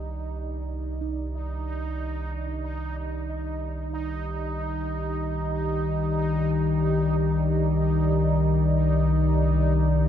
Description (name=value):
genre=dark ambient drone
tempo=free time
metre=none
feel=none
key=C minor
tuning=A4 = 440 Hz
part: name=dark analog pad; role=sustained chords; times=0.0-10.1 s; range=G4 to D5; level=-33 LUFS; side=right 2 dB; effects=chorus
part: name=gamelan-type bossed gongs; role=arpeggios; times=0.0-6.8 s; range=G3 to Eb4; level=-42 LUFS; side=right 7 dB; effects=none
part: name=deep rumbling drone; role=drone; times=0.0-10.1 s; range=C2 to Eb3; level=-24 LUFS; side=left 1 dB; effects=built-in reverb
part: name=bubbling stepped-filter texture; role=texture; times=0.0-10.1 s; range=Eb4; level=-33 LUFS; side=right 5 dB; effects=chorus, built-in reverb
room=moderate huge ambient reverb, RT60 7.9 s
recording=dark, warm production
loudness=-23 LUFS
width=side -9 dB against mid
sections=0.0-10.1 A section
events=fade-in on analog synth pad 0.0-10.1; fade-in on synth texture 0.0-10.1; filter sweep on synth drone 0.0-10.1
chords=0.0 Cmadd9